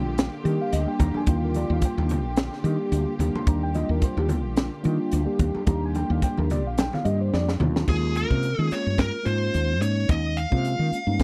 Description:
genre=electric jazz fusion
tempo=109 BPM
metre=4/4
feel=swing 55% on 16ths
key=Eb major, Eb mixolydian from 7.9 s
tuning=A4 = 443 Hz
part: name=mellow tine electric piano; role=accompaniment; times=0.0-11.2 s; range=G3 to C6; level=-30 LUFS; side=equal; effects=analog chorus
part: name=rich studio string section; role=sustained chords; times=0.0-7.8 s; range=D3 to G4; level=-39 LUFS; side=equal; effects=none
part: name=woody fretless electric bass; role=bass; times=0.0-11.2 s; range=Bb1 to Eb3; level=-27 LUFS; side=equal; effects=none
part: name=crisp fusion drum kit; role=drums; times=0.2-11.2 s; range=crash cymbal, hi-hat, kick drum, snare drum, toms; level=-27 LUFS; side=equal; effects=none
part: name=congas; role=percussion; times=1.0-7.9 s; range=none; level=-34 LUFS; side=equal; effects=none
part: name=smooth overdriven lead guitar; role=melody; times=7.9-11.2 s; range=Ab4 to F5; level=-31 LUFS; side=equal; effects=slapback echo
room=little or no reverb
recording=none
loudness=-24 LUFS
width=mono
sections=0.0-7.9 A section; 7.9-11.2 B section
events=drum fill 7.3-7.9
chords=0.0 Ebmaj9; 7.9 Eb9sus4

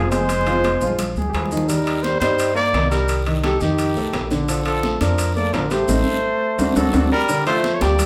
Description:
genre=Afro-Cuban jazz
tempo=172 BPM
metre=4/4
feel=straight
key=Bb major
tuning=A4 = 440 Hz
part: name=mellow trumpet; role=melody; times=0.0-8.1 s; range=G4 to D5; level=-25 LUFS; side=equal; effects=none
part: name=bright trombone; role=second line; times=0.0-8.1 s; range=Eb3 to Bb3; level=-29 LUFS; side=equal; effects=none
part: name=warm baby grand piano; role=accompaniment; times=0.0-8.1 s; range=D3 to G5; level=-25 LUFS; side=equal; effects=none
part: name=upright bass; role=bass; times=0.0-8.1 s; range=F1 to G2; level=-26 LUFS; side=equal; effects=none
part: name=congas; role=percussion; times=0.1-8.1 s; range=none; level=-32 LUFS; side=equal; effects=none
part: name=maracas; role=percussion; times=0.1-8.1 s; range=none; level=-37 LUFS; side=equal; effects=none
part: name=timbales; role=percussion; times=0.1-8.1 s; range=none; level=-30 LUFS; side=equal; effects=none
part: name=guiro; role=percussion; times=1.7-8.1 s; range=none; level=-38 LUFS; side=equal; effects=none
room=wet large studio reverb, RT60 0.8 s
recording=band playing live in one room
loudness=-19 LUFS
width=mono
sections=0.0-7.3 A section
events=drum fill 0.3-1.7, 6.6-7.3; band accent 5.9-7.3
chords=0.3 Fm; 1.0 Bb7; 1.7 Ebmaj7; 3.1 Cm; 3.8 F13; 4.5 Bbmaj7; 5.9 Adim; 6.6 D7; 7.3 Gm7

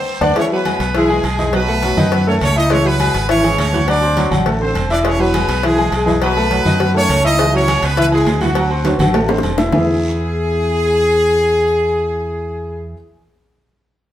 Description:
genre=latin, salsa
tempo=205 BPM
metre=4/4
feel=straight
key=E major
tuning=A4 = 444 Hz
part: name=brilliant horn section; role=melody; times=0.0-12.8 s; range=F#3 to D#5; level=-18 LUFS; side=equal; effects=plate reverb
part: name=clear grand piano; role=accompaniment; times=0.2-12.9 s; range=D#3 to F#6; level=-20 LUFS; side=left 2 dB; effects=none
part: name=fingered electric bass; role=bass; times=0.2-12.9 s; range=E1 to F#2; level=-19 LUFS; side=right 1 dB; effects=none
part: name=congas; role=percussion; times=0.2-9.8 s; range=none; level=-24 LUFS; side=right 1 dB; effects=none
part: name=cowbell and bongos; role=percussion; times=0.2-9.8 s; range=none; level=-25 LUFS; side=left 5 dB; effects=none
part: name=guiro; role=percussion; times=0.2-9.8 s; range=none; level=-33 LUFS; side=right 3 dB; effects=none
part: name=timbales and agogo bells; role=percussion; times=0.2-9.8 s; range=none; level=-25 LUFS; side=right 3 dB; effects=none
part: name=mellow trombone section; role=second line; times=0.4-9.8 s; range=D3 to G#3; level=-22 LUFS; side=right 1 dB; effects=none
room=wet studio reverb, RT60 0.9 s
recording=heard from further back in the room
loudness=-13 LUFS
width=side -12 dB against mid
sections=0.4-9.7 A section; 9.7-12.1 B section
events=drum fill 0.0-0.4, 8.8-9.7; band accent 0.0-0.4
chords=0.4 E; 1.5 B7; 2.7 C#m7; 3.9 D7; 5.0 E; 6.2 B7; 7.4 C#m7; 8.6 D7; 9.7 E

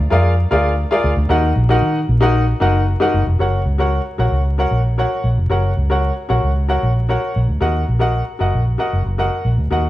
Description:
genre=uptempo 1960s-style soul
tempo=114 BPM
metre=4/4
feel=straight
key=F# major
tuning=A4 = 440 Hz
part: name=vintage muted fingered electric bass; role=bass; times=0.0-9.9 s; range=E#1 to D#3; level=-16 LUFS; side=equal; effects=none
part: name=clear grand piano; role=accompaniment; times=0.1-9.9 s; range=D#4 to F#5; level=-18 LUFS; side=left 1 dB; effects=none
room=moderate stone room reverb, RT60 1.4 s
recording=band playing live in one room, vinyl crackle, nothing above 11.0 kHz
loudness=-15 LUFS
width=side -15 dB against mid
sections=0.0-3.4 A section; 3.4-9.9 B section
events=none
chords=0.0 A#7; 1.3 D#m; 3.4 F#; 7.6 D#m

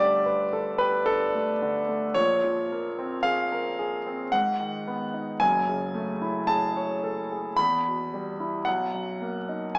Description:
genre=classical, impressionist solo piano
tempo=55 BPM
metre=3/4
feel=rubato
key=unclear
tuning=A4 = 440 Hz
part: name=clear concert grand piano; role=solo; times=0.0-9.8 s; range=Gb1 to B5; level=-27 LUFS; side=equal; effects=none
room=wet recital hall reverb, RT60 1.6 s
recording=small speaker sound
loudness=-27 LUFS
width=mono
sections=0.0-9.8 A section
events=none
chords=0.0 G69; 2.2 Bbm9; 4.3 Abm7; 5.4 Gbm9; 7.6 Em; 8.7 Bmaj7

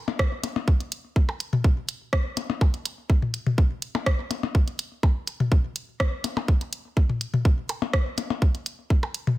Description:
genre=techno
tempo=124 BPM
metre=4/4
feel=straight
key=none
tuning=none
part: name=electronic percussion blips and toms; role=percussion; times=0.1-9.4 s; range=none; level=-27 LUFS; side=left 4 dB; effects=overdrive, studio reverb
part: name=electronic kick drum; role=drums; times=0.2-9.0 s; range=none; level=-20 LUFS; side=equal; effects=overdrive, studio reverb
part: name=garage drum kit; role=drums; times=0.2-9.2 s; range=hi-hat, rim click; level=-28 LUFS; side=right 1 dB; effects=overdrive, studio reverb
room=little or no reverb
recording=none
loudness=-22 LUFS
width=side -16 dB against mid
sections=0.0-9.4 A section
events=none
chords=none

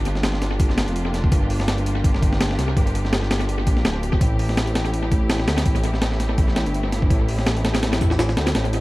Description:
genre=drum and bass, jungle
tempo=166 BPM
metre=4/4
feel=swing 55% on 16ths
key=G dorian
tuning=A4 = 440 Hz
part: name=rich symphonic string section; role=sustained chords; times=0.0-8.8 s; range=A3 to G4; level=-30 LUFS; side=equal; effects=vintage 12-bit sampler grit
part: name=dark detuned saw bass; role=bass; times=0.0-8.8 s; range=D1 to D2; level=-22 LUFS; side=equal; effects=tube saturation
part: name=breakbeat sampler-style drum kit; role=drums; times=0.1-8.8 s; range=hi-hat, kick drum, snare drum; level=-21 LUFS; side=equal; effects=small room reverb, tape echo
part: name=noise sweep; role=sound effects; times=8.8 s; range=none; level=-39 LUFS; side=right 4 dB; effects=none
room=little or no reverb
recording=echo-heavy mix, vinyl crackle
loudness=-18 LUFS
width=side -19 dB against mid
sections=0.0-8.8 A section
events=none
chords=0.0 Gm7; 4.2 Am7

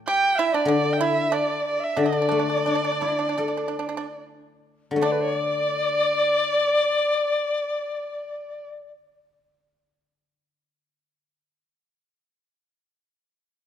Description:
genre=chinese traditional, Chinese chamber ensemble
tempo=69-100 BPM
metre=4/4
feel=rubato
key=unclear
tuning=A4 = 442 Hz
part: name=guzheng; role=accompaniment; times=0.0-11.5 s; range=D3 to A4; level=-25 LUFS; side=left 4 dB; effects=none
part: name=rich erhu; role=melody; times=0.1-8.7 s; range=D5 to G5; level=-26 LUFS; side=right 4 dB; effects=none
part: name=pipa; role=second line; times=0.1-8.7 s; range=D4 to G4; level=-29 LUFS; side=right 6 dB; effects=none
part: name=reedy dizi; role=second line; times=0.1-8.9 s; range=B4 to G5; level=-25 LUFS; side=left 4 dB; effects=none
room=moderate recital hall reverb, RT60 1.6 s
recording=none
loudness=-21 LUFS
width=side -9 dB against mid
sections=0.0-5.0 A section; 5.0-8.5 B section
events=slowing down 0.0-5.0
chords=none

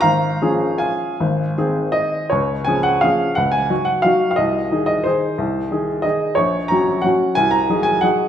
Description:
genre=classical, piano waltz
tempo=148-193 BPM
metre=3/4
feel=rubato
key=Db major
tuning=A4 = 440 Hz
part: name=warm upright piano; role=solo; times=0.0-8.3 s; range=Ab1 to Bb5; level=-16 LUFS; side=equal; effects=none
room=wet recital hall reverb, RT60 1.6 s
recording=minimal, uncompressed stereo recording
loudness=-16 LUFS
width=side -9 dB against mid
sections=0.0-2.3 A section; 2.3-8.3 B section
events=none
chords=0.0 Db/Ab; 1.2 Ab; 2.3 Db; 3.4 Ebm7/Db; 4.4 Ab/C; 6.4 Gb/Bb; 7.4 Ab7/C

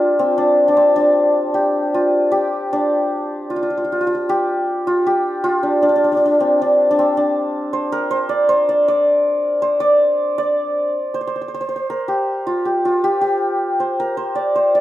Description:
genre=indian classical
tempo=156 BPM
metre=4/4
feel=straight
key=D raga malkauns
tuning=A4 = 441 Hz
part: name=santur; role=solo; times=0.0-14.8 s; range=C4 to D5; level=-15 LUFS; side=equal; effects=none
room=moderate studio reverb, RT60 0.6 s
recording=none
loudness=-15 LUFS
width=side -14 dB against mid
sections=0.0-8.9 A section; 8.9-14.8 B section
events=speeding up 0.0-14.8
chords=none

